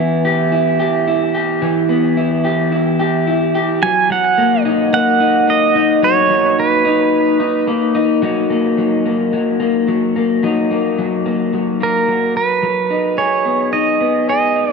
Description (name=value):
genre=dream pop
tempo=109 BPM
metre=4/4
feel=straight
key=unclear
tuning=A4 = 439 Hz
part: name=electric guitar at the edge of break-up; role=arpeggios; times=0.0-14.7 s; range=E3 to G#4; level=-15 LUFS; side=left 2 dB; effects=lush chorus, tape echo
part: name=pedal steel guitar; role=melody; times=3.8-7.6, 11.8-14.7 s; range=A#4 to G#5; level=-15 LUFS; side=right 5 dB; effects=tape echo
room=wet huge ambient reverb, RT60 3.9 s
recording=dark, warm production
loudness=-13 LUFS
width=side -4 dB against mid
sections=0.0-8.2 A section; 8.2-12.6 B section; 12.6-14.7 C section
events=none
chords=0.0 Em; 3.8 F#6; 12.6 B6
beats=0.52 1.07 | 1.62 2.17 2.72 3.27 | 3.82 4.38 4.92 5.48 | 6.03 6.58 7.13 7.68 | 8.23 8.78 9.33 9.88 | 10.43 10.98 11.53 12.08 | 12.63 13.18 13.73 14.28